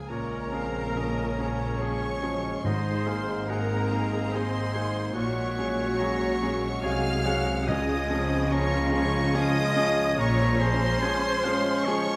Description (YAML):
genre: cinematic, emotional film score for orchestra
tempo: 72 BPM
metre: 3/4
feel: rubato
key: unclear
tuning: A4 = 440 Hz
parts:
  - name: rich studio violin section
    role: melody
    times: 0.0-12.2 s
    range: Bb5 to F6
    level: -37 LUFS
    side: equal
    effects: none
  - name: rich studio violin section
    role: second line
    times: 0.0-12.2 s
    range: Bb4 to F5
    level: -39 LUFS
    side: equal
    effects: none
  - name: silver concert flute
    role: second line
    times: 0.0-12.2 s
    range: Ab4 to F5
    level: -36 LUFS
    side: equal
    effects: none
  - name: bright baby grand piano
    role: accompaniment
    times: 0.0-12.2 s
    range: Db2 to Db5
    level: -34 LUFS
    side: equal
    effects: none
  - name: clear oboe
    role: second line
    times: 0.1-12.2 s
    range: Db5 to Bb5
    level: -38 LUFS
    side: equal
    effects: none
  - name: rich studio viola section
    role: accompaniment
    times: 0.1-12.2 s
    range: Db3 to Bb4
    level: -37 LUFS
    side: equal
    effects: none
  - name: warm French horn section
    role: sustained chords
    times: 0.1-12.2 s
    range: Db3 to Gb4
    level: -36 LUFS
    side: equal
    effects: none
  - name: clear studio cello section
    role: bass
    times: 0.1-10.9 s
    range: Ab2 to Db3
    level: -35 LUFS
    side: equal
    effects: none
  - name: rich studio double bass section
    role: bass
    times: 0.1-10.9 s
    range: Ab1 to Db2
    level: -34 LUFS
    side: equal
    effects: none
  - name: timpani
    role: percussion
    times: 2.6-8.9 s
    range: Ab2 to Db3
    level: -37 LUFS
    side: equal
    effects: none
room: wet scoring stage reverb, RT60 2.0 s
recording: none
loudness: -26 LUFS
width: mono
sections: 0.1-12.2 A section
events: none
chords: 0.1 Bbm7; 2.6 Abadd9; 5.2 Gbadd9/Bb; 7.7 Db; 10.2 Bbm7